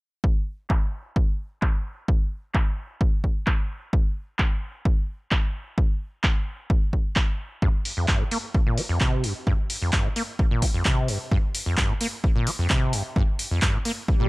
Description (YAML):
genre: acid house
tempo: 130 BPM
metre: 4/4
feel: straight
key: G minor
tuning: A4 = 436 Hz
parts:
  - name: electronic kick drum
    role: drums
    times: 0.2-14.2 s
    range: none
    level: -22 LUFS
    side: equal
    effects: none
  - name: booming analog drum machine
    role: drums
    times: 0.7-13.9 s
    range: handclaps, hi-hat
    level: -28 LUFS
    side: equal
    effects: low-pass filter on snare, low-pass filter on hats
  - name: acid bass, saw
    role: riff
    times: 7.6-14.3 s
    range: F2 to Bb3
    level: -26 LUFS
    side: equal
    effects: overdrive, wide subtle chorus, vintage 12-bit sampler grit, tape echo
  - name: swell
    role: sound effects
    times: 14.1-14.3 s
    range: none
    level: -27 LUFS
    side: right 1 dB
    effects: none
room: little or no reverb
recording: none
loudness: -22 LUFS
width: side -22 dB against mid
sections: 0.2-14.3 A section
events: filter sweep on drum 0.2-14.3; swell 14.1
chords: none